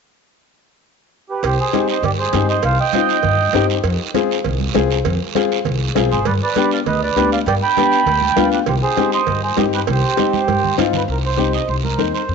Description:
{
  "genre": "latin, cumbia",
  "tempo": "199 BPM",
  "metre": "4/4",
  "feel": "straight",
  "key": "C harmonic minor",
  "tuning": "A4 = 440 Hz",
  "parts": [
    { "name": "mellow accordion", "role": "melody", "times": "1.3-3.7, 6.1-12.3 s", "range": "G4 to B5", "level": "-18 LUFS", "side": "right 5 dB", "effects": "none" },
    { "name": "upright bass", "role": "bass", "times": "1.4-12.3 s", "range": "Ab1 to G2", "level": "-21 LUFS", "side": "left 1 dB", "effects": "none" },
    { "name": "cowbell and timbales", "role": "percussion", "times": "1.4-10.9 s", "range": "none", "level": "-27 LUFS", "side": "right 12 dB", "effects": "none" },
    { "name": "guiro", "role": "percussion", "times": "1.4-12.3 s", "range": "none", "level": "-28 LUFS", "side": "right 13 dB", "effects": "none" },
    { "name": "dark upright piano", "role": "accompaniment", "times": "1.7-12.2 s", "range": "B3 to Bb4", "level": "-20 LUFS", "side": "left 11 dB", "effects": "none" },
    { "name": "congas", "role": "percussion", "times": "1.7-12.1 s", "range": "none", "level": "-26 LUFS", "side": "right 12 dB", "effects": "none" }
  ],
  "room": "moderate plate reverb, RT60 3.5 s",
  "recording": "1960s-style stereo with parts hard left and right, nothing above 7.9 kHz",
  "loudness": "-15 LUFS",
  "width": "side -5 dB against mid",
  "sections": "0.2-1.4 A section; 1.4-11.1 B section; 11.1-12.3 C section",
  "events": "drum fill 10.2-11.1",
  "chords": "0.2 N.C.; 1.4 Cm; 3.8 Fm; 6.3 G; 8.7 Cm",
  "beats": "| 0.23 0.53 0.83 1.13 | 1.43 1.74 2.04 2.34 | 2.64 2.94 3.24 3.54 | 3.85 4.15 4.45 4.75 | 5.05 5.35 5.66 5.96 | 6.26 6.56 6.86 7.16 | 7.46 7.77 8.07 8.37 | 8.67 8.97 9.27 9.58 | 9.88 10.18 10.48 10.78 | 11.09 11.39 11.69 11.99 | 12.29"
}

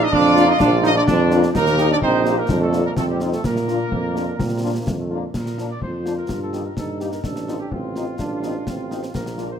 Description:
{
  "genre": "military-style march for wind band",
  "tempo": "126 BPM",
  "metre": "2/4",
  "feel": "straight",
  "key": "Bb major",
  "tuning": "A4 = 439 Hz",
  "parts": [
    { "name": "warm trumpet section", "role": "melody", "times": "0.0-9.6 s", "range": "F4 to Eb5", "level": "-26 LUFS", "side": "left 1 dB", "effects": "none" },
    { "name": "clear euphonium", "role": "second line", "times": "0.0-9.6 s", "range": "G3 to F4", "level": "-24 LUFS", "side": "right 3 dB", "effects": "none" },
    { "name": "clear trombone section", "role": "sustained chords", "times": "0.0-9.5 s", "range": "Eb3 to F4", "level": "-25 LUFS", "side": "right 1 dB", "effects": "none" },
    { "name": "warm tuba", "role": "bass", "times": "0.0-9.5 s", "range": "A1 to Bb2", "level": "-22 LUFS", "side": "right 2 dB", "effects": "none" },
    { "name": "concert bass drum, concert snare drum and clash cymbals", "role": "drums", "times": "0.1-9.5 s", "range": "none", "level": "-27 LUFS", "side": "left 2 dB", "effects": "none" },
    { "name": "warm French horn section", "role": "accompaniment", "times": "0.4-9.5 s", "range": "Bb3 to G4", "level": "-26 LUFS", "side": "left 6 dB", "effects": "none" }
  ],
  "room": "moderate large studio reverb, RT60 1.4 s",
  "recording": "none",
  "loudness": "-18 LUFS",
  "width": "side -8 dB against mid",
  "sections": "0.0-5.3 A section; 5.3-9.6 A section",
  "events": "none",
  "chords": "0.0 Bb; 1.5 Eb; 2.5 Bb/F; 3.0 F5; 3.4 Bb; 6.3 Eb/G; 7.2 F7/A",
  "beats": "0.12 | 0.60 1.07 | 1.55 2.02 | 2.50 2.97 | 3.44 3.92 | 4.39 4.87 | 5.34 5.82 | 6.29 6.77 | 7.24 7.72 | 8.20 8.67 | 9.15"
}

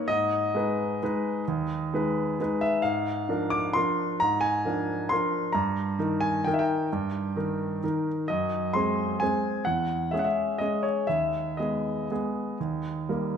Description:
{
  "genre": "classical, piano waltz",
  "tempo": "117-139 BPM",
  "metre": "3/4",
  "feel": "rubato",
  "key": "G# minor",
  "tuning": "A4 = 442 Hz",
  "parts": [
    { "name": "clear grand piano", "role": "solo", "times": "0.0-13.4 s", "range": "D#2 to D6", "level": "-25 LUFS", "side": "equal", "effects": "none" }
  ],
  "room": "moderate scoring stage reverb, RT60 1.6 s",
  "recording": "minimal, uncompressed stereo recording",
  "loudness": "-25 LUFS",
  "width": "side -7 dB against mid",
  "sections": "0.0-13.4 A section",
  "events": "none",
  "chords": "0.1 G#m; 2.8 A#7/G#; 5.6 D#/G; 8.3 G#7/F#; 9.7 C#m/E; 11.1 G#m/D#; 12.6 D#",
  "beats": "| 0.10 0.55 1.01 | 1.47 1.92 2.39 | 2.84 3.29 3.76 | 4.21 4.66 5.11 | 5.55 6.00 6.47 | 6.92 7.36 7.83 | 8.29 8.74 9.21 | 9.66 10.12 10.61 | 11.10 11.60 12.11 | 12.61 13.10"
}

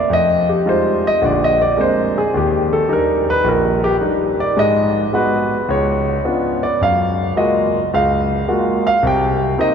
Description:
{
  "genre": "solo jazz",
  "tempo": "107 BPM",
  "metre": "4/4",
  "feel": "swing 68% on 8ths",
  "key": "unclear",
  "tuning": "A4 = 440 Hz",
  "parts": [
    { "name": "warm concert grand piano", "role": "solo", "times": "0.0-9.7 s", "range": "Bb1 to G5", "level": "-14 LUFS", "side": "equal", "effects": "none" }
  ],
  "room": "wet cathedral reverb, RT60 7.3 s",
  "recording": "recorded in a church or concert hall",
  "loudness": "-14 LUFS",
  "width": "side -7 dB against mid",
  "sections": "0.0-9.7 A section",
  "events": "grand piano solo 0.0-9.7",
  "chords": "0.1 Fm9; 1.2 Bb9; 2.3 Ebmaj7; 4.6 Abm7; 5.7 Db7b9; 6.8 Gbmaj9; 9.0 Cm7",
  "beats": "| 0.10 0.65 1.21 1.77 | 2.33 2.89 3.45 4.00 | 4.56 5.12 5.68 6.24 | 6.80 7.36 7.92 8.47 | 9.03 9.59"
}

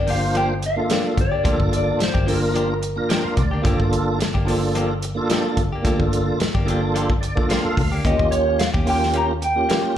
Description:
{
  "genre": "straight-eighth soul blues",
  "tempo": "109 BPM",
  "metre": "4/4",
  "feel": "swing 54% on 16ths",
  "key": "G minor",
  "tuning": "A4 = 440 Hz",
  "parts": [
    { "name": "electric guitar through a small old amp", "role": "melody", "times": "0.0-3.3, 8.1-10.0 s", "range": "Bb4 to Bb5", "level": "-23 LUFS", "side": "equal", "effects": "slapback echo" },
    { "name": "direct-recorded clean electric guitar", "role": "stabs", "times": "0.0-9.9 s", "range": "F3 to G4", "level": "-29 LUFS", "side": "left 6 dB", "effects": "slapback echo" },
    { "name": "vintage muted fingered electric bass", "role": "bass", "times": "0.0-9.6 s", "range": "G1 to Eb2", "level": "-23 LUFS", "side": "equal", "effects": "none" },
    { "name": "tonewheel organ", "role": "accompaniment", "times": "0.1-10.0 s", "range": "Bb3 to G5", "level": "-23 LUFS", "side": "right 2 dB", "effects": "slow rotary speaker, overdrive, chorus vibrato, slapback echo" },
    { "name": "warm soul drum kit", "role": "drums", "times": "0.1-9.8 s", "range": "hi-hat, kick drum, snare drum", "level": "-23 LUFS", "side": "equal", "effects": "none" }
  ],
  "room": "light reverb, studio ambience",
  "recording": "live gig heard through the venue's PA, club reverb",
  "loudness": "-18 LUFS",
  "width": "side -10 dB against mid",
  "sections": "0.0-10.0 A section",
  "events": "tonewheel organ fill 2.8-3.6, 6.9-8.0",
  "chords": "0.0 Gm7; 8.0 Eb7",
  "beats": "0.35 0.90 | 1.45 2.00 2.55 3.10 | 3.65 4.20 4.75 5.30 | 5.84 6.39 6.94 7.49 | 8.04 8.59 9.14 9.69"
}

